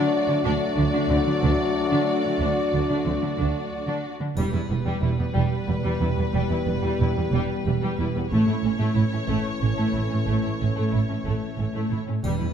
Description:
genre	cinematic, epic orchestral film score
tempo	61 BPM (dotted quarters)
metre	6/8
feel	straight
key	E dorian from 4.4 s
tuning	A4 = 437 Hz
part	clear symphonic violin section	melody	0.0-12.5 s	B4 to D5	-33 LUFS	left 4 dB	none
part	warm symphonic violin section	second line	0.0-12.5 s	G3 to F#4	-34 LUFS	left 3 dB	none
part	rich symphonic viola section	accompaniment	0.0-12.5 s	G3 to D4	-30 LUFS	left 1 dB	none
part	clear trombone section	sustained chords	0.0-12.5 s	E3 to A3	-33 LUFS	right 3 dB	none
part	dark French horn section	sustained chords	0.0-12.5 s	B3 to G4	-30 LUFS	left 6 dB	none
part	clear trumpet section	stabs	0.0-4.0 s	D5	-30 LUFS	right 1 dB	none
part	warm symphonic cello section	bass	0.0-12.5 s	E2 to D3	-27 LUFS	right 2 dB	none
part	clear tuba	bass	0.4-3.5 s	D2	-33 LUFS	right 3 dB	none
part	warm symphonic double bass section	bass	0.4-12.3 s	E1 to D2	-27 LUFS	right 4 dB	none
part	triangle	percussion	4.4-5.6, 12.2-12.5 s	none	-49 LUFS	left 1 dB	none
part	timpani	percussion	12.3-12.5 s	E2	-28 LUFS	left 2 dB	none
room	moderate scoring stage reverb, RT60 1.9 s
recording	dark, warm production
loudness	-21 LUFS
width	side -8 dB against mid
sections	0.0-4.4 A section; 4.4-12.5 B section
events	none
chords	0.0 D; 4.4 Em; 8.3 A

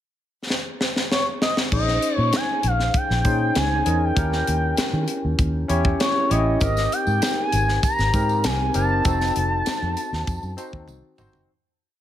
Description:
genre	polished 1980s jazz-funk pop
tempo	98 BPM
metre	4/4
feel	straight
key	Bb dorian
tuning	A4 = 441 Hz
part	tight funk drum kit	drums	0.5-11.5 s	crash cymbal, hi-hat, kick drum, snare drum, toms	-24 LUFS	equal	gated reverb
part	expressive synth lead	melody	1.1-10.8 s	Db5 to Bb5	-24 LUFS	equal	chorus
part	barky tine electric piano	accompaniment	1.7-11.5 s	C4 to Db5	-26 LUFS	left 2 dB	lush chorus
part	vintage muted fingered electric bass	bass	1.7-11.5 s	F1 to Eb3	-23 LUFS	equal	none
part	tambourine	percussion	6.6-11.5 s	none	-39 LUFS	right 11 dB	none
room	light reverb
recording	none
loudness	-19 LUFS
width	side -11 dB against mid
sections	0.0-1.7 pickup bar; 1.7-11.5 verse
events	drum fill 0.5-1.7, 10.9-11.5; fade-out 9.1-11.5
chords	0.0 N.C.; 1.7 Bbm11; 4.2 Eb7b9; 6.6 Abmaj9; 9.1 F7b9

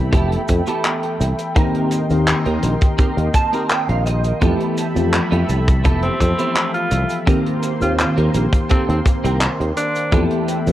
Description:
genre	vaporwave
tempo	84 BPM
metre	4/4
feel	straight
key	unclear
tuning	A4 = 440 Hz
part	mellow FM electric piano	accompaniment	0.0-10.7 s	Eb3 to B4	-22 LUFS	left 2 dB	wide subtle chorus, analog delay
part	lush unison pad	sustained chords	0.0-10.7 s	Bb3 to C6	-27 LUFS	equal	chorus, phaser
part	sustaining fretless electric bass	bass	0.0-10.7 s	F1 to F2	-19 LUFS	equal	tube saturation
part	clean electric guitar	riff	0.1-10.6 s	B3 to A5	-25 LUFS	right 3 dB	ensemble chorus, analog delay
part	kick drum	drums	0.1-10.3 s	none	-16 LUFS	equal	none
part	tight funk drum kit	drums	0.1-10.7 s	cabasa, handclaps, hi-hat	-24 LUFS	equal	none
part	bright alto saxophone	melody	6.0-10.2 s	C4 to F4	-24 LUFS	equal	vintage 12-bit sampler grit, tape echo
room	light reverb, small room reverb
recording	worn, warbling old tape, cassette tape, warbly pitch drift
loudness	-15 LUFS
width	side -13 dB against mid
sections	0.0-10.7 A section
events	clean electric guitar fill 3.0-4.4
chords	0.0 Fmaj9#11; 1.6 Eb6; 4.4 Fmaj9#11; 7.3 Eb6; 10.1 Fmaj9#11

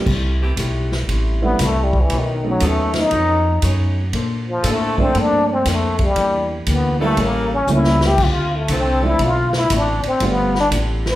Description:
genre	jazz, big band swing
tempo	118 BPM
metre	4/4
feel	swing 67% on 8ths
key	C major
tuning	A4 = 440 Hz
part	warm grand piano	accompaniment	0.0-10.5 s	F3 to F4	-22 LUFS	right 2 dB	none
part	upright bass	bass	0.0-11.2 s	G1 to Bb2	-20 LUFS	equal	none
part	archtop guitar, miked and amplified	accompaniment	0.1-11.1 s	A2 to C5	-27 LUFS	left 3 dB	none
part	swinging big-band drum kit	drums	0.1-11.1 s	crash cymbal, hi-hat, kick drum, ride cymbal, snare drum	-24 LUFS	equal	none
part	edgy saxophone section	sustained chords	0.4-9.5 s	D3 to A4	-27 LUFS	equal	none
part	trombone with plunger mute	melody	1.4-11.2 s	D#3 to B4	-19 LUFS	left 2 dB	plate reverb
room	wet large studio reverb, RT60 0.8 s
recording	heard from further back in the room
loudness	-15 LUFS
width	side -14 dB against mid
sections	0.1-11.2 A section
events	trombone solo 0.1-11.2; drum fill 7.7-8.2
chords	0.1 C6; 2.1 B9; 4.1 Bbmaj9; 6.2 Em7b5; 7.2 A7b9; 8.2 Dm7; 10.2 G9

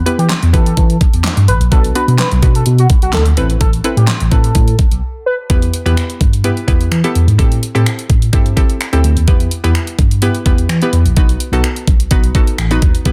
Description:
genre	dance-pop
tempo	127 BPM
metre	4/4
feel	straight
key	E harmonic minor from 5.5 s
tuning	A4 = 444 Hz
part	hollow square pluck	accompaniment	0.1-13.1 s	B3 to B4	-22 LUFS	equal	chorus, sidechain pumping
part	pop drum kit	drums	0.1-13.1 s	finger snaps, handclaps, hi-hat, kick drum, snare drum	-16 LUFS	equal	overdrive
part	octave-doubled lead	melody	0.2-5.4 s	F#4 to B4	-23 LUFS	equal	chorus, phaser, sidechain pumping, tape echo
part	mellow tine electric piano	bass	0.2-13.1 s	A1 to E3	-16 LUFS	equal	sidechain pumping
room	digital ambience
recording	dense, heavily limited modern master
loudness	-13 LUFS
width	mono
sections	0.0-5.5 A section; 5.5-13.1 B section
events	break 5.0-5.5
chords	0.0 Em; 1.7 Bm; 3.4 Amadd9; 5.5 Em; 7.4 Am7; 9.3 Em; 11.2 B

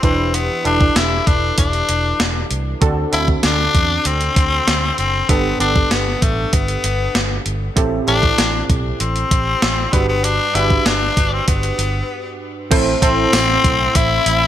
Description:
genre	1980s-style pop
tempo	97 BPM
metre	4/4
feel	straight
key	A dorian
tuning	A4 = 445 Hz
part	raspy tenor saxophone	melody	0.0-14.5 s	A3 to E4	-19 LUFS	left 4 dB	ping-pong delay
part	warm analog keys	accompaniment	0.0-14.5 s	G2 to C5	-22 LUFS	right 3 dB	chorus
part	vintage muted fingered electric bass	bass	0.0-14.5 s	E1 to E2	-22 LUFS	equal	none
part	gated 80s digital drum machine	drums	0.0-14.4 s	crash cymbal, hi-hat, kick drum, snare drum, tambourine	-18 LUFS	equal	gated reverb, gated reverb snare
part	sweeping resonant pad	sustained chords	12.7-14.5 s	A3 to E4	-29 LUFS	right 2 dB	wide subtle chorus
part	tambourine	percussion	13.3-13.5 s	none	-31 LUFS	right 9 dB	none
room	moderate plate reverb, RT60 2.4 s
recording	bright 1980s-style digital production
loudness	-14 LUFS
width	side -11 dB against mid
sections	0.0-12.7 A section; 12.7-14.5 B section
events	break 12.1-12.7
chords	0.0 Em7; 2.8 D7; 5.3 Gadd9; 7.8 Am7; 9.9 Gmaj7; 12.7 Am

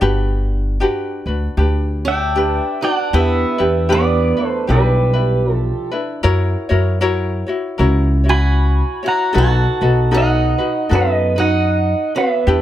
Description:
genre	Hawaiian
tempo	77 BPM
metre	4/4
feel	swing 59% on 8ths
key	G major, E minor from 3.1 s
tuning	A4 = 440 Hz
part	ukulele	accompaniment	0.0-12.6 s	D4 to C#5	-21 LUFS	left 2 dB	none
part	upright bass	bass	0.0-12.6 s	G1 to F#2	-16 LUFS	equal	none
part	picked swing-style acoustic guitar	second line	2.0-12.6 s	G3 to F#4	-22 LUFS	right 3 dB	none
part	pedal steel guitar	melody	2.1-12.6 s	G4 to B5	-19 LUFS	right 2 dB	none
room	light reverb, small room ambience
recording	none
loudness	-14 LUFS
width	side -12 dB against mid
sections	0.0-3.1 A section; 3.1-12.6 B section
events	none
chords	0.0 Gmaj7; 3.1 Em7; 6.2 F#7; 9.4 B7

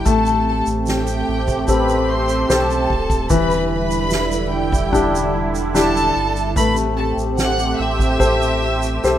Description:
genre	pop ballad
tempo	74 BPM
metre	4/4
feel	straight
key	unclear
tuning	A4 = 440 Hz
part	warm studio violin section	melody	0.0-9.2 s	G4 to F#6	-23 LUFS	right 1 dB	none
part	clear baby grand piano	accompaniment	0.0-9.2 s	E3 to C5	-20 LUFS	left 3 dB	none
part	sweeping resonant pad	sustained chords	0.0-9.2 s	D3 to G4	-22 LUFS	right 2 dB	chorus
part	sub bass with octave	bass	0.0-9.2 s	D1 to B1	-24 LUFS	equal	none
part	soft-mallet drum kit	drums	0.1-9.2 s	kick drum, ride cymbal, snare drum	-24 LUFS	right 1 dB	none
part	egg shaker	percussion	0.1-9.2 s	none	-32 LUFS	right 10 dB	none
room	light reverb, small room ambience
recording	rough home demo mix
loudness	-16 LUFS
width	side -11 dB against mid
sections	0.0-9.2 A section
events	none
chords	0.1 Am7; 3.3 Em7; 6.6 Am7

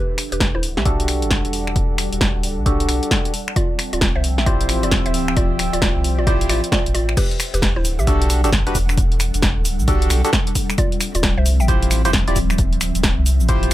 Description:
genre	UK garage, two-step garage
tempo	133 BPM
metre	4/4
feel	swing 63% on 16ths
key	E phrygian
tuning	A4 = 439 Hz
part	mallet-like synth pluck	melody	0.0-11.9 s	E4 to G5	-26 LUFS	equal	chorus, tape echo
part	ethereal airy pad	sustained chords	0.0-13.7 s	F3 to G5	-30 LUFS	left 1 dB	ensemble chorus, built-in reverb, sidechain pumping
part	warbly tape-like pad	texture	0.1-7.2 s	F3 to E6	-29 LUFS	equal	chorus, built-in reverb, sidechain pumping
part	punchy analog drum machine	drums	0.2-13.7 s	cabasa, crash cymbal, finger snaps, hi-hat, snare drum	-22 LUFS	equal	none
part	soft dub sub bass	bass	0.3-13.7 s	D1 to C2	-20 LUFS	equal	tube saturation
part	electronic kick drum	drums	0.4-13.6 s	none	-20 LUFS	equal	none
part	percussive organ stab	stabs	0.9-13.7 s	D4 to D5	-24 LUFS	equal	wide subtle chorus, digital delay
room	little or no reverb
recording	none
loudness	-16 LUFS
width	side -15 dB against mid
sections	0.0-7.2 A section; 7.2-13.7 B section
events	build-up 0.0-7.2; filter sweep on synth stab 0.0-7.2; filter sweep on ambient pad 0.0-7.2; drop 7.2-13.7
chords	0.0 Em11; 3.3 Dm11; 7.2 Em11; 10.6 Dm11

